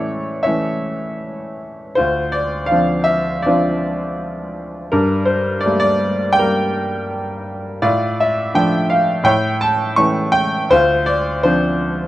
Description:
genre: classical, lyrical solo piano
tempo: 82 BPM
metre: 4/4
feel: rubato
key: D minor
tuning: A4 = 435 Hz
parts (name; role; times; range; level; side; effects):
- bright grand piano; solo; 0.0-12.1 s; D2 to C#6; -15 LUFS; equal; none
room: light reverb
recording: dark, warm production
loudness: -15 LUFS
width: side -15 dB against mid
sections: 0.0-12.1 A section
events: none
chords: 0.0 A; 2.0 Dm7; 4.9 Gmadd9; 7.8 Dm/A; 9.3 A; 10.7 Dm7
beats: 0.44 1.21 | 1.98 2.71 3.45 4.20 | 4.93 5.67 6.39 7.11 | 7.84 8.56 9.27 9.98 | 10.71 11.44

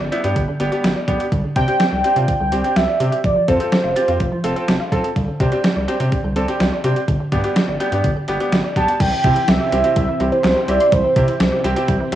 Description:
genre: synth-pop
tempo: 125 BPM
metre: 4/4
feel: straight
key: C major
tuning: A4 = 440 Hz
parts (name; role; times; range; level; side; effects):
- resonant blip pluck; arpeggios; 0.0-12.2 s; D3 to A6; -25 LUFS; equal; chorus, cassette tape, tape echo
- round analog bass; bass; 0.0-12.2 s; F1 to C3; -22 LUFS; equal; tube saturation
- bright grand piano; accompaniment; 0.1-12.2 s; B3 to A4; -23 LUFS; right 1 dB; cassette tape
- clean 12-bit digital drum machine; drums; 0.1-12.2 s; crash cymbal, handclaps, hi-hat, kick drum, snare drum; -21 LUFS; equal; overdrive, cassette tape
- warm velvety synth lead; melody; 1.6-4.9, 8.8-11.9 s; C5 to A5; -18 LUFS; right 2 dB; chorus, cassette tape, tape echo
- ensemble organ-string; sustained chords; 9.0-12.2 s; C3 to G4; -27 LUFS; left 2 dB; ensemble chorus, cassette tape
room: moderate spring reverb, RT60 2.1 s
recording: home recording on cassette, small room ambience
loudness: -15 LUFS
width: side -12 dB against mid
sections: 0.0-9.0 A section; 9.0-12.2 B section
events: none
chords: 0.0 G; 1.3 Csus2; 3.2 F; 5.2 Csus2; 7.1 G; 9.0 C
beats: 0.36 0.84 | 1.32 1.80 2.28 2.76 | 3.24 3.72 4.20 4.68 | 5.16 5.64 6.12 6.60 | 7.08 7.56 8.04 8.52 | 9.00 9.48 9.96 10.44 | 10.92 11.40 11.88

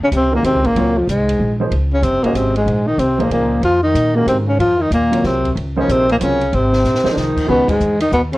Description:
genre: modal jazz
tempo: 187 BPM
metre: 3/4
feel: swing 64% on 8ths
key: Bb minor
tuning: A4 = 440 Hz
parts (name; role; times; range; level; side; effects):
- breathy tenor saxophone; melody; 0.0-8.4 s; F3 to F4; -16 LUFS; equal; none
- brilliant trombone; second line; 0.0-8.4 s; F2 to F3; -23 LUFS; left 3 dB; none
- upright bass; bass; 0.0-8.4 s; Gb1 to Bb2; -20 LUFS; equal; none
- compact cocktail drum kit; drums; 0.1-8.4 s; crash cymbal, hi-hat, kick drum, ride cymbal, snare drum; -30 LUFS; equal; none
- warm upright piano; accompaniment; 0.3-7.7 s; C3 to Eb5; -21 LUFS; right 2 dB; none
room: light reverb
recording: worn, warbling old tape, cassette tape, warbly pitch drift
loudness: -13 LUFS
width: side -18 dB against mid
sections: 0.0-7.5 A section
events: drum fill 6.8-7.2; band accent 7.6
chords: 0.0 Bbm11; 6.5 Ab; 7.5 C#m9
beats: 0.10 0.42 | 0.74 1.07 1.39 | 1.71 2.03 2.35 | 2.67 2.99 3.31 | 3.63 3.95 4.27 | 4.59 4.91 5.24 | 5.56 5.88 6.20 | 6.52 6.84 7.16 | 7.48 7.80 8.12

